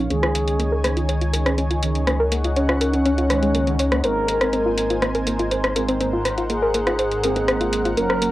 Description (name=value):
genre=melodic techno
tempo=122 BPM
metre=4/4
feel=straight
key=unclear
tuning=A4 = 440 Hz
part: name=lush unison pad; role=sustained chords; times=0.0-8.3 s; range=Db4 to Ab5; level=-28 LUFS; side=left 1 dB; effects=chorus, cassette tape
part: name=soft round pluck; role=arpeggios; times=0.0-8.3 s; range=Ab3 to Db5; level=-24 LUFS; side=left 1 dB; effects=chorus, cassette tape, analog delay
part: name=analog synth brass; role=stabs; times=0.0-8.3 s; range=Eb3 to Db4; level=-27 LUFS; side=right 5 dB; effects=chorus, cassette tape, analog delay
part: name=dark detuned saw bass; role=bass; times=0.0-8.3 s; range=Db2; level=-25 LUFS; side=equal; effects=tube saturation
part: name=expressive synth lead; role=melody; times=0.1-8.3 s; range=Db4 to Bb4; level=-23 LUFS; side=left 1 dB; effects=chorus, cassette tape, analog delay
part: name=house drum kit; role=drums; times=0.1-8.3 s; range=hi-hat, rim click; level=-24 LUFS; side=equal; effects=cassette tape
room=light reverb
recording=home recording on cassette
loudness=-18 LUFS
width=side -16 dB against mid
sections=0.0-8.3 A section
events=filter sweep on synth arpeggio sound 0.0-8.3; filter sweep on analog synth pad 0.0-8.3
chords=0.1 Dbsus2; 4.0 Abadd9